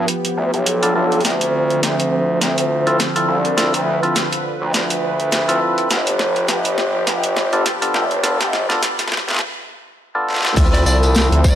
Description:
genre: glitch hop.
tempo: 103 BPM.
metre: 4/4.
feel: swing 56% on 16ths.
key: D dorian.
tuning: A4 = 440 Hz.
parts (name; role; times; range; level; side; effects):
warm analog pad; sustained chords; 0.0-11.6 s; D3 to B4; -23 LUFS; right 1 dB; chorus, tremolo, sidechain pumping.
gritty driven synth bass; bass; 0.0-11.6 s; F1 to G2; -18 LUFS; equal; high-pass filter.
boom bap sampler-style drum kit; drums; 0.1-11.4 s; crash cymbal, hi-hat, snare drum; -21 LUFS; equal; overdrive, high-pass filter on hats, high-pass filter on snare, high-pass filter on cymbals, high-pass filter on room.
percussive tonewheel organ; stabs; 0.8-11.4 s; B3 to A4; -20 LUFS; left 1 dB; overdrive, vintage 12-bit sampler grit, sidechain pumping, ping-pong delay.
electronic kick drum; drums; 10.6-11.6 s; none; -14 LUFS; equal; overdrive.
tambourine; percussion; 10.6-11.6 s; none; -26 LUFS; left 2 dB; none.
lightly driven lead guitar; melody; 10.7-11.6 s; D5; -24 LUFS; right 1 dB; vintage 12-bit sampler grit, ping-pong delay.
room: moderate lush hall reverb, RT60 1.9 s.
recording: high-pass filter.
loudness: -15 LUFS.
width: side -10 dB against mid.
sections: 0.0-10.6 A section.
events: build-up 0.0-10.6; filter sweep 0.0-10.6; drum fill 1.2-9.4, 10.3; break 9.4-10.6.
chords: 0.0 G7; 1.2 Dm7; 5.9 G7; 10.6 Dm7.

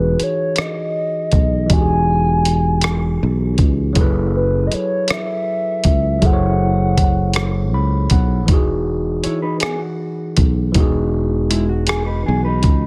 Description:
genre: slow six-eight R&B.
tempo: 53 BPM (dotted quarters).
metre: 6/8.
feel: straight.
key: E major.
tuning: A4 = 440 Hz.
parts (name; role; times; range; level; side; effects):
hollow clarinet-like synth lead; melody; 0.0-7.8 s; B4 to G#5; -23 LUFS; equal; chorus.
overdriven tine electric piano; accompaniment; 0.0-12.9 s; E3 to B5; -25 LUFS; equal; none.
sustaining fretless electric bass; bass; 0.0-12.9 s; E1 to C#2; -20 LUFS; equal; none.
dusty soul sampler-style drum kit; drums; 0.2-12.8 s; hi-hat, kick drum, rim click; -19 LUFS; equal; none.
mellow electric guitar; second line; 9.2-12.9 s; G#3 to C#5; -28 LUFS; equal; none.
room: little or no reverb.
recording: none.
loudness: -17 LUFS.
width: mono.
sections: 0.0-12.9 A section.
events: tine electric piano fill 7.4-8.5.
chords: 0.0 Emaj9; 4.0 F#m11; 8.5 Emaj9.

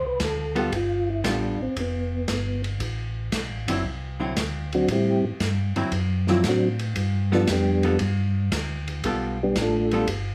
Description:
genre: soul jazz organ trio.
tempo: 116 BPM.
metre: 4/4.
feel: swing 69% on 8ths.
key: unclear.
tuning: A4 = 440 Hz.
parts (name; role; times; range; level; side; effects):
percussive tonewheel organ; melody; 0.0-10.1 s; F3 to B4; -26 LUFS; equal; slow rotary speaker, chorus vibrato.
mellow tonewheel organ; bass; 0.0-10.3 s; F1 to A2; -29 LUFS; equal; chorus vibrato, slow rotary speaker.
open jazz drum kit; drums; 0.2-10.2 s; hi-hat, kick drum, ride cymbal, snare drum; -33 LUFS; equal; none.
archtop guitar, miked and amplified; accompaniment; 0.6-10.1 s; D3 to A4; -29 LUFS; equal; none.
room: light reverb.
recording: studio reverb.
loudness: -25 LUFS.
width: mono.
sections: 0.0-10.3 A section.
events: tonewheel organ solo 0.0-10.3.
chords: 0.0 D7(no3); 0.7 G9; 2.8 D9; 4.9 Am7; 5.9 D9; 7.0 G9.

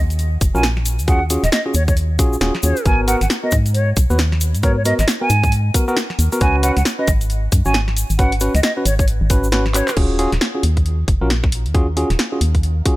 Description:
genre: UK garage, two-step garage.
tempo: 135 BPM.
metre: 4/4.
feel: swing 61% on 16ths.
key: Eb minor.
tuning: A4 = 441 Hz.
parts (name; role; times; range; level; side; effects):
organ-like FM bass; bass; 0.0-12.8 s; Eb1 to Ab2; -18 LUFS; equal; none.
punchy analog drum machine; drums; 0.1-13.0 s; crash cymbal, handclaps, hi-hat, snare drum; -22 LUFS; equal; none.
egg shaker; percussion; 0.1-10.0 s; none; -28 LUFS; left 3 dB; none.
electronic kick drum; drums; 0.4-13.0 s; none; -16 LUFS; equal; overdrive.
hollow concert flute; melody; 0.5-10.0 s; Db5 to Ab5; -23 LUFS; right 1 dB; vintage 12-bit sampler grit, tape echo.
bright tine electric piano; stabs; 0.5-13.0 s; Cb4 to Db5; -22 LUFS; equal; tape echo.
granular cloud pad; texture; 11.7-13.0 s; Eb4 to F5; -43 LUFS; right 1 dB; none.
room: little or no reverb.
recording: none.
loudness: -14 LUFS.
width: side -18 dB against mid.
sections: 0.0-10.0 A section; 10.0-13.0 B section.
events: drop 0.0-10.0; drum fill 9.7.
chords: 0.0 Ebm11; 2.9 Abm9; 6.4 Db7sus4; 10.0 Ebm11.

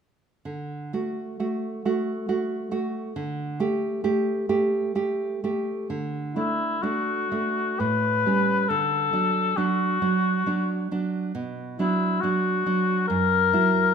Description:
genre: romantic duo for oboe and classical guitar.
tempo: 66 BPM.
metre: 3/4.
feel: uneven beats, rubato.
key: D major.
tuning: A4 = 440 Hz.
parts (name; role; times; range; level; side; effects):
nylon-string guitar; accompaniment; 0.5-13.9 s; F#2 to G4; -25 LUFS; right 3 dB; none.
mellow oboe; melody; 6.3-13.9 s; E4 to B4; -23 LUFS; left 5 dB; none.
room: moderate scoring stage reverb, RT60 1.9 s.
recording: minimal, uncompressed stereo recording.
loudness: -22 LUFS.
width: side -6 dB against mid.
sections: 0.5-5.9 A section; 5.9-13.9 B section.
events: none.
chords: 0.5 D; 3.2 Dsus4; 5.9 D; 7.8 A7; 8.7 D; 11.3 Bm; 13.1 F#7.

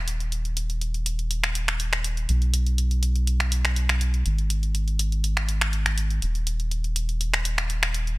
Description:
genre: progressive house.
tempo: 122 BPM.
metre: 4/4.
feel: straight.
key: unclear.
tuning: A4 = 440 Hz.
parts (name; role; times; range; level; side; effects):
round analog bass; bass; 0.0-8.2 s; Eb1 to Cb2; -24 LUFS; equal; none.
big-room dance drum kit; drums; 0.1-8.2 s; finger snaps, hi-hat; -26 LUFS; equal; small room ambience.
room: digital ambience.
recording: none.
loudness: -22 LUFS.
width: side -21 dB against mid.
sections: 0.0-8.2 A section.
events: none.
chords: none.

